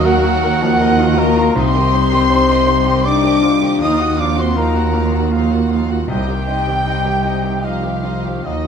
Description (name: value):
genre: cinematic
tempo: 79 BPM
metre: 3/4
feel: rubato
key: C minor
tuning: A4 = 440 Hz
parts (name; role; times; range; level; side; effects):
- muted symphonic violin section; melody; 0.0-8.7 s; Eb5 to Eb6; -25 LUFS; left 1 dB; none
- dark cor anglais; second line; 0.0-8.7 s; Bb4 to G5; -22 LUFS; right 3 dB; none
- mellow hollow silver concert flute; second line; 0.0-8.7 s; Eb5 to Eb6; -24 LUFS; left 4 dB; none
- muted symphonic violin section; second line; 0.0-8.6 s; Eb4 to Gb5; -28 LUFS; left 4 dB; none
- bright grand piano; accompaniment; 0.0-8.7 s; C2 to F5; -22 LUFS; left 2 dB; none
- muted symphonic viola section; accompaniment; 0.0-8.6 s; Eb3 to Gb4; -24 LUFS; right 2 dB; none
- mellow French horn section; sustained chords; 0.0-8.7 s; Eb3 to Eb4; -19 LUFS; left 7 dB; none
- muted chamber double bass section; bass; 0.0-8.7 s; C2 to Eb2; -20 LUFS; right 4 dB; none
- muted symphonic cello section; bass; 0.0-8.7 s; C2 to Eb2; -22 LUFS; right 4 dB; none
room: light reverb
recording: close, detailed microphones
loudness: -13 LUFS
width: side -7 dB against mid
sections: 0.0-8.7 A section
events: none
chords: 0.0 Ebmadd9; 1.6 Cm; 3.8 Ebmadd9; 6.1 Cm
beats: 0.06 0.81 | 1.56 2.30 3.05 | 3.81 4.57 5.33 | 6.09 6.86 7.64 | 8.45